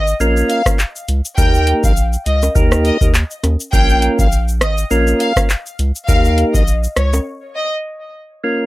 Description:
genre	dancehall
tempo	102 BPM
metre	4/4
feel	swing 56% on 16ths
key	unclear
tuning	A4 = 438 Hz
part	warm studio violin section	melody	0.0-7.7 s	Db5 to G5	-21 LUFS	left 1 dB	analog delay
part	round analog bass	bass	0.0-7.2 s	Ab1 to Eb2	-16 LUFS	equal	none
part	booming analog drum machine	drums	0.1-7.3 s	handclaps, hi-hat, kick drum, rim click, shaker	-15 LUFS	equal	none
part	egg shaker and timbales	percussion	0.1-7.3 s	none	-27 LUFS	left 1 dB	none
part	percussive tonewheel organ	accompaniment	0.2-8.7 s	Bb3 to Bb4	-16 LUFS	right 1 dB	slow rotary speaker, sidechain pumping
room	little or no reverb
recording	dry, gritty hardware recording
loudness	-13 LUFS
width	side -18 dB against mid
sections	0.0-8.4 A section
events	break 7.3-8.4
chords	0.0 Bbm; 1.4 Eb; 3.7 Bbm; 6.1 Eb

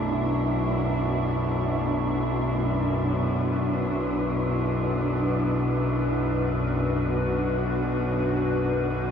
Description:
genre	dark ambient drone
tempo	free time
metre	none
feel	none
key	unclear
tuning	A4 = 440 Hz
part	muted studio cello section	sustained chords	0.0-9.1 s	B2 to F#4	-26 LUFS	equal	none
part	overtone-sweeping drone	drone	0.0-9.1 s	B1 to F#2	-27 LUFS	left 1 dB	chorus, built-in reverb
part	icy glass pad	texture	0.0-9.1 s	B4 to E5	-34 LUFS	left 1 dB	chorus, built-in reverb, shimmer reverb
room	wet cathedral reverb, RT60 5.5 s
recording	cassette tape, nothing above 10.7 kHz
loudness	-23 LUFS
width	side -7 dB against mid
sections	0.0-9.1 A section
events	none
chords	0.0 Bm7; 2.8 E5/B

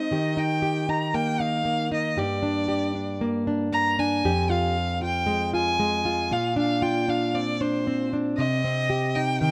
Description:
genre	acoustic pop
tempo	116 BPM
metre	4/4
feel	straight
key	C minor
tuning	A4 = 441 Hz
part	warm violin	melody	0.0-9.5 s	C5 to Bb5	-29 LUFS	equal	none
part	nylon-string guitar	accompaniment	0.0-9.5 s	F2 to G4	-27 LUFS	equal	none
room	light reverb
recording	close, detailed microphones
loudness	-25 LUFS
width	mono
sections	0.0-8.4 A section; 8.4-9.5 B section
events	none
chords	0.1 Eb; 2.2 Gm; 4.2 Fmadd9; 6.3 Bbadd9; 8.4 Cm

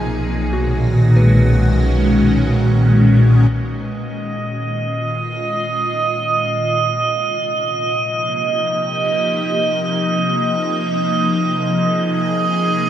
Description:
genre	ambient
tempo	free time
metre	none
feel	none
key	unclear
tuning	A4 = 441 Hz
part	evolving wavetable pad	sustained chords	0.0-12.9 s	A#2 to Ab4	-16 LUFS	equal	ensemble chorus, built-in reverb, phaser
part	soft synth bell	arpeggios	0.0-4.5 s	F#4 to Ab5	-31 LUFS	equal	chorus, tape echo
part	dark studio double bass section	bass	0.0-3.5 s	B1	-20 LUFS	equal	none
part	organ-like drone	drone	0.0-3.6 s	none	barely audible	none	none
part	drifting glass-harmonics texture	texture	4.2-12.9 s	Eb5	-19 LUFS	right 3 dB	chorus, built-in reverb
room	wet huge ambient reverb, RT60 7.1 s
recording	none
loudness	-14 LUFS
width	side -10 dB against mid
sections	0.0-3.5 A section; 3.5-12.9 B section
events	fade-out on synth bell 0.0-3.5; fade-in on ambient pad 3.5-12.9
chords	0.0 Bmaj7; 3.5 Bbm7; 7.0 Cm; 10.6 Bb5

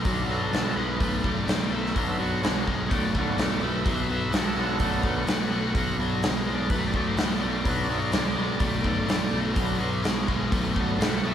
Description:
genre	blues rock power trio and southern rock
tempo	126 BPM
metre	4/4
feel	straight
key	B minor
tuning	A4 = 440 Hz
part	biting overdriven guitar	riff	0.0-11.3 s	B2 to A3	-27 LUFS	left 1 dB	none
part	fuzz picked electric bass	bass	0.0-11.3 s	B1	-30 LUFS	equal	overdrive
part	big rock drum kit	drums	0.0-11.1 s	hi-hat, kick drum, snare drum	-28 LUFS	equal	none
part	overdriven tonewheel organ	sustained chords	0.1-11.3 s	F#3 to F#5	-32 LUFS	right 2 dB	slow rotary speaker
room	moderate stone room reverb, RT60 1.2 s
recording	band playing live in one room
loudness	-23 LUFS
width	side -9 dB against mid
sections	0.0-11.3 A section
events	tonewheel organ solo 0.0-11.3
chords	0.0 Bm

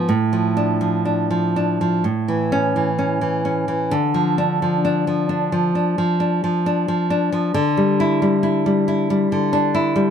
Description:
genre	romantic piece for solo classical guitar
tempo	60-71 BPM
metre	4/4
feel	rubato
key	D minor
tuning	A4 = 440 Hz
part	nylon-string guitar	solo	0.0-10.1 s	A2 to E4	-17 LUFS	equal	none
room	light reverb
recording	none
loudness	-17 LUFS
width	side -8 dB against mid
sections	0.0-10.1 A section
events	none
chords	0.1 Dm/A; 2.0 A; 3.9 Dm; 7.5 Dsus24

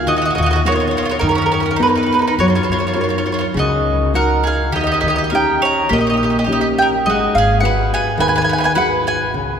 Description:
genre	italian folk, Italian serenade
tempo	104 BPM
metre	4/4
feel	rubato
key	unclear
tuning	A4 = 440 Hz
part	mandolin	melody	0.0-9.3 s	A#4 to A#5	-18 LUFS	right 1 dB	none
part	bowl-back mandolin	second line	0.0-9.3 s	C#4 to C#5	-20 LUFS	right 3 dB	none
part	upright bass	bass	0.0-9.5 s	G#1 to F#2	-22 LUFS	left 1 dB	none
part	nylon-string guitar	accompaniment	0.1-9.6 s	C#3 to B4	-19 LUFS	left 2 dB	none
room	wet cathedral reverb, RT60 5.0 s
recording	recorded in a church or concert hall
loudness	-14 LUFS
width	side -7 dB against mid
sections	0.0-9.6 A section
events	none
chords	0.1 Bmaj7/D#; 2.4 F#6; 4.7 D#7; 7.1 G#m7

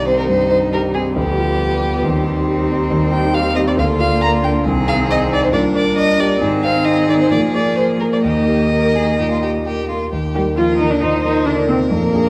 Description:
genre	quick classical-period movement for piano quintet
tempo	135 BPM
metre	4/4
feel	rubato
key	Eb major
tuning	A4 = 436 Hz
part	rich violin	melody	0.0-12.3 s	Bb3 to Bb5	-22 LUFS	equal	none
part	clear cello	second line	0.0-12.3 s	Bb2 to G3	-27 LUFS	equal	none
part	clear violin	second line	0.0-12.3 s	B3 to C5	-27 LUFS	equal	none
part	rich viola	accompaniment	0.0-12.3 s	G3 to G4	-23 LUFS	equal	none
part	warm concert grand piano	accompaniment	0.0-12.3 s	C2 to D5	-20 LUFS	equal	none
room	wet recital hall reverb, RT60 1.6 s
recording	dark, warm production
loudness	-16 LUFS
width	mono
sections	0.0-10.1 A section; 10.1-12.3 B section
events	none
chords	0.0 Cm; 1.2 G7/D; 2.0 Cm/Eb; 3.8 Bb/D; 4.7 Ab/C; 5.5 Gm/Bb; 6.4 Ab; 7.3 Bb5; 8.2 Eb

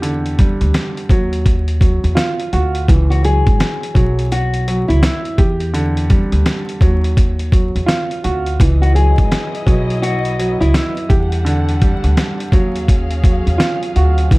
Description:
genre	hip hop, boom-bap hip-hop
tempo	84 BPM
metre	4/4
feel	swing 62% on 16ths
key	unclear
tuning	A4 = 440 Hz
part	warm grand piano	accompaniment	0.0-14.4 s	D3 to G4	-21 LUFS	right 2 dB	cassette tape, high-pass filter, low-pass filter
part	upright bass	bass	0.0-14.4 s	G#1 to E2	-16 LUFS	equal	none
part	dusty soul sampler-style drum kit	drums	0.0-14.4 s	hi-hat, kick drum, snare drum	-15 LUFS	equal	none
part	nylon-string guitar	melody	3.1-10.9 s	E4 to G#4	-22 LUFS	left 2 dB	high-pass filter, low-pass filter
part	warm studio string section	sustained chords	8.6-14.4 s	F#3 to F#5	-26 LUFS	left 1 dB	high-pass filter, low-pass filter
room	little or no reverb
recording	dark, warm production, vinyl crackle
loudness	-13 LUFS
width	side -22 dB against mid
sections	0.0-14.4 A section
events	none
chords	0.0 Em7; 1.1 D#madd9; 2.9 C#m7; 5.4 Em7; 6.8 D#madd9; 8.6 C#m11; 11.1 Em11; 12.5 D#m11

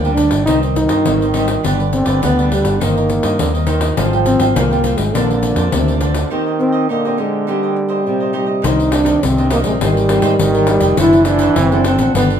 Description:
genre	samba and choro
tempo	103 BPM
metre	4/4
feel	straight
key	Eb major, C minor from 8.6 s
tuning	A4 = 441 Hz
part	mellow trombone	melody	0.0-12.3 s	G3 to E4	-16 LUFS	equal	none
part	warm trombone	second line	0.0-12.4 s	C3 to F3	-21 LUFS	right 4 dB	none
part	cavaquinho	accompaniment	0.0-12.4 s	D4 to G5	-24 LUFS	right 5 dB	none
part	nylon-string guitar	accompaniment	0.0-12.4 s	G2 to Bb4	-23 LUFS	left 2 dB	none
part	fingered electric bass	bass	0.0-12.4 s	F1 to Ab2	-18 LUFS	equal	none
part	pandeiro	percussion	0.0-12.4 s	none	-21 LUFS	left 4 dB	none
room	moderate studio reverb, RT60 0.6 s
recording	minimal, uncompressed stereo recording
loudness	-12 LUFS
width	side -8 dB against mid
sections	0.0-8.6 A section; 8.6-12.4 B section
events	break 6.3-8.6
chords	0.5 Cm; 1.7 G; 2.8 Cm7/G; 4.0 Fmadd9/Ab; 5.1 Bbadd9; 6.3 Eb6; 8.6 Cm9; 9.8 Abmaj9; 11.0 D7/F#

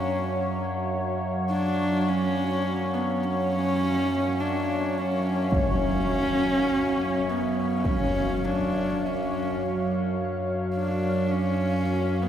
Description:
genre	dark ambient drone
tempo	52 BPM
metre	4/4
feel	straight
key	unclear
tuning	A4 = 440 Hz
part	warm horsehead fiddle	melody	0.0-12.3 s	B3 to D4	-28 LUFS	equal	shimmer reverb, diffuse ambient delay
part	sweeping resonant pad	sustained chords	0.0-12.3 s	F#3 to E#5	-30 LUFS	equal	chorus, shimmer reverb
part	overtone-sweeping drone	drone	0.0-12.3 s	F#2 to F#3	-28 LUFS	right 1 dB	chorus, built-in reverb
part	bronze singing bowl	texture	0.0-12.3 s	none	barely audible	none	none
part	impact	percussion	5.5-8.1 s	none	-31 LUFS	equal	low-pass filter on sfx
room	wet cathedral reverb, RT60 5.6 s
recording	in a vast, echoing space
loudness	-23 LUFS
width	side -10 dB against mid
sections	0.0-12.3 A section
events	fade-in on impacts and reversed cymbals 0.0-12.3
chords	0.0 F#5

